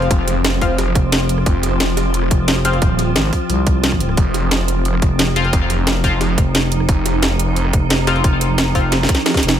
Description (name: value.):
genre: dark technical drum and bass.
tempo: 177 BPM.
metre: 4/4.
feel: straight.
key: unclear.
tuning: A4 = 440 Hz.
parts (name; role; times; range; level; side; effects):
swarming drone; sustained chords; 0.0-9.6 s; F3 to F4; -21 LUFS; right 1 dB; built-in reverb, sidechain pumping.
band-passed chord stab; stabs; 0.0-2.8, 5.4-8.8 s; F3 to F4; -22 LUFS; left 3 dB; chorus, phaser, digital delay.
growling FM bass; bass; 0.0-9.6 s; F1 to C2; -18 LUFS; equal; none.
drum and bass drum kit; drums; 0.0-9.6 s; hi-hat, rim click, snare drum; -19 LUFS; right 1 dB; overdrive, small room reverb.
jungle sampler-style drum kit; drums; 0.0-9.6 s; hi-hat, snare drum; -27 LUFS; equal; high-pass filter on hats, small room reverb, high-pass filter on snare, high-pass filter on room.
snarling distorted saw bass; bass; 0.1-7.7 s; F1; -19 LUFS; equal; distortion, overdrive, sidechain pumping.
electronic kick drum; drums; 0.1-9.4 s; none; -16 LUFS; equal; overdrive, small room reverb.
room: digital ambience.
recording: none.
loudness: -14 LUFS.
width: side -10 dB against mid.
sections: 0.0-9.6 A section.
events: drop 0.0-9.6; drum fill 8.9-9.6.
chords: 0.0 F5.